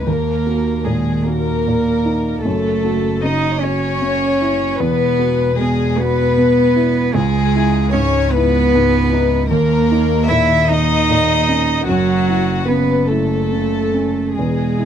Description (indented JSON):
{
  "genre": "neoclassical piano and strings",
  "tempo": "51 BPM (dotted quarters)",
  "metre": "6/8",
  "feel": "rubato",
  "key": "unclear",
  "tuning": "A4 = 439 Hz",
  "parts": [
    { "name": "warm chamber violin section", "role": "melody", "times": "0.0-14.9 s", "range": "F#4 to E5", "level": "-19 LUFS", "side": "left 7 dB", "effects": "none" },
    { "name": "warm cello", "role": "second line", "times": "0.0-14.9 s", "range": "F#3 to E4", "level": "-19 LUFS", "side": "right 8 dB", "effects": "none" },
    { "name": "felt-muted upright piano", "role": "accompaniment", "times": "0.0-14.9 s", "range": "C#2 to F#4", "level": "-20 LUFS", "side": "right 1 dB", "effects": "none" },
    { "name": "warm double bass", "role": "bass", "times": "0.0-14.9 s", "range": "E1 to D#2", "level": "-21 LUFS", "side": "left 1 dB", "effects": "none" }
  ],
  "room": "light reverb",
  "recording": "dry, close 1970s-style studio recording",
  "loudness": "-14 LUFS",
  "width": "side -9 dB against mid",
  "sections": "0.0-14.9 A section",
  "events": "none",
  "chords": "0.1 D#m; 2.5 F#m7; 4.8 Esus2; 7.2 C#madd9; 9.5 D#5; 11.9 F#m7",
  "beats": "| 0.07 1.27 | 2.45 3.63 | 4.80 5.98 | 7.15 8.33 | 9.51 10.69 | 11.88 13.10 | 14.36"
}